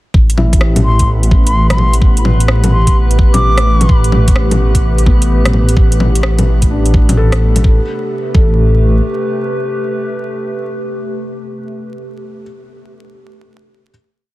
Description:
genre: future garage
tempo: 128 BPM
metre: 4/4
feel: swing 66% on 16ths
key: A minor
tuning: A4 = 440 Hz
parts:
  - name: warbly tape-like pad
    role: sustained chords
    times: 1.1-11.9 s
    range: C3 to B4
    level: -21 LUFS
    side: equal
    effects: chorus, built-in reverb, phaser, vintage 12-bit sampler grit, sidechain pumping
  - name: swelling detuned saw bass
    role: bass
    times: 0.1-9.0 s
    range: A1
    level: -12 LUFS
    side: equal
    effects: sidechain pumping
  - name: electronic kick drum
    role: drums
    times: 0.1-8.5 s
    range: none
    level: -10 LUFS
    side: equal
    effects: small room reverb
  - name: drifting glass-harmonics texture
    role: texture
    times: 0.9-7.7 s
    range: B3 to B4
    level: -28 LUFS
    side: right 2 dB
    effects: chorus, built-in reverb
  - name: garage drum kit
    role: drums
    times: 0.3-7.6 s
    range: bongos, hi-hat, rim click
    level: -17 LUFS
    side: left 1 dB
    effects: small room reverb, soft clipping on snare
  - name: felt-muted upright piano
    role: accompaniment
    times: 0.4-13.9 s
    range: B3 to A4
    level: -24 LUFS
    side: left 3 dB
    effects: sidechain pumping, low-pass filter, analog delay
  - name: hollow concert flute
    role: melody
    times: 0.8-4.0 s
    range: C6 to D6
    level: -20 LUFS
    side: left 1 dB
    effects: tape echo
room: little or no reverb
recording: dense, heavily limited modern master, vinyl crackle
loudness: -9 LUFS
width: side -17 dB against mid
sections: 0.1-7.6 groove; 7.6-11.4 final chord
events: filter sweep on felt piano 0.1-7.6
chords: 0.1 Am9

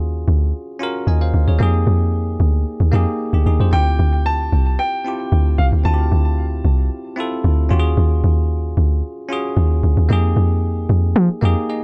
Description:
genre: amapiano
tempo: 113 BPM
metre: 4/4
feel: straight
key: unclear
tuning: A4 = 440 Hz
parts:
  - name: bell-like tine electric piano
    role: accompaniment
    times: 0.0-11.8 s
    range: Bb3 to Ab5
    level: -27 LUFS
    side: equal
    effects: none
  - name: deep log drum bass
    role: bass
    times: 0.0-11.6 s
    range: C2 to F3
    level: -17 LUFS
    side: equal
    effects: none
  - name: warm grand piano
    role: melody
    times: 3.7-6.9 s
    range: F5 to A5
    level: -26 LUFS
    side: equal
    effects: tape echo
room: small room reverb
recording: echo-heavy mix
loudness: -17 LUFS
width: mono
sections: 0.0-11.8 A section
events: tine electric piano fill 11.4-11.8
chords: 0.0 Ebm11; 1.6 Fm11; 3.7 Dm11; 7.7 Ebm11; 10.1 Fm11

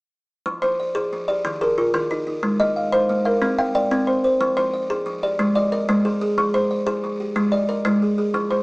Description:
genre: southern african traditional, mbira-style interlocking cycle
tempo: 122 BPM (dotted quarters)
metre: 12/8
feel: straight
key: F dorian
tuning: A4 = 440 Hz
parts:
  - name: kalimba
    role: arpeggios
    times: 0.5-8.6 s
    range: Eb3 to F5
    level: -20 LUFS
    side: equal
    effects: none
  - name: buzzing kalimba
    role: arpeggios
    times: 0.6-8.6 s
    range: Eb3 to G5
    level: -24 LUFS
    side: equal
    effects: none
room: wet stone room reverb, RT60 1.0 s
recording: band playing live in one room, small speaker sound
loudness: -18 LUFS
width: side -31 dB against mid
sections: 0.5-8.6 A section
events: none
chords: 0.5 Fm; 1.4 Eb; 2.4 Ab; 3.4 C5; 4.4 Fm; 5.4 Ab5; 6.4 Fm; 7.4 Ab5

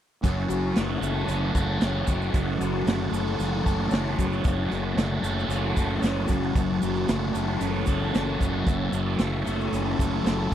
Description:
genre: psychedelic rock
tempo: 114 BPM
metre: 4/4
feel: straight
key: F# minor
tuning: A4 = 440 Hz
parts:
  - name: tonewheel organ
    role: sustained chords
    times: 0.2-10.5 s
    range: C#5 to A5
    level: -37 LUFS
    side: right 3 dB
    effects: chorus vibrato, fast rotary speaker
  - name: thick fuzz guitar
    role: riff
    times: 0.2-10.5 s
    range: F#2 to A4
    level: -27 LUFS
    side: left 1 dB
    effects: distortion, phaser
  - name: fuzz fingered electric bass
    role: bass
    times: 0.2-10.5 s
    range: F#1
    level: -28 LUFS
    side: equal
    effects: overdrive
  - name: vintage drum kit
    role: drums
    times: 0.2-10.5 s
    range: hi-hat, kick drum, snare drum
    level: -26 LUFS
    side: equal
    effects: none
  - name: maracas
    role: percussion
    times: 0.2-10.4 s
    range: none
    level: -46 LUFS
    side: right 14 dB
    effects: none
room: little or no reverb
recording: dry, close 1970s-style studio recording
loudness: -23 LUFS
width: side -10 dB against mid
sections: 0.2-10.5 A section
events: none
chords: 0.2 F#m

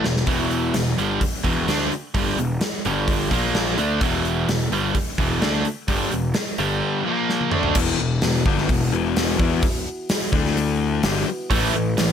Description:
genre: hard rock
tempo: 128 BPM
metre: 4/4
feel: straight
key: E minor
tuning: A4 = 442 Hz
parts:
  - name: cranked stack guitar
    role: riff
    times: 0.0-7.8, 11.5-12.1 s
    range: E2 to D4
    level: -24 LUFS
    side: right 8 dB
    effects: overdrive
  - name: sludgy distorted guitar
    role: riff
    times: 0.0-12.1 s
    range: E2 to E4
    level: -24 LUFS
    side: left 9 dB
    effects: overdrive
  - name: fuzz picked electric bass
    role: bass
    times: 0.0-12.1 s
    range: E1 to E2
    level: -26 LUFS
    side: equal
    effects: overdrive
  - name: gated 80s drum kit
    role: drums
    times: 0.0-12.1 s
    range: crash cymbal, hi-hat, kick drum, snare drum, toms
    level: -24 LUFS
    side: equal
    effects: none
  - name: dark brass ensemble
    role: sustained chords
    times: 7.8-12.1 s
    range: D3 to B4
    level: -33 LUFS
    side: right 1 dB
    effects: none
room: light reverb, small room ambience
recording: none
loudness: -19 LUFS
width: side -8 dB against mid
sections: 0.0-7.8 A section; 7.8-12.1 B section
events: drum fill 0.0, 7.3-7.8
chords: 0.0 Em; 2.8 G5; 3.3 A#5; 3.8 Em; 6.6 G5; 7.1 A#5; 7.5 D5; 7.8 Em; 10.3 D5; 11.0 Em; 11.5 A5

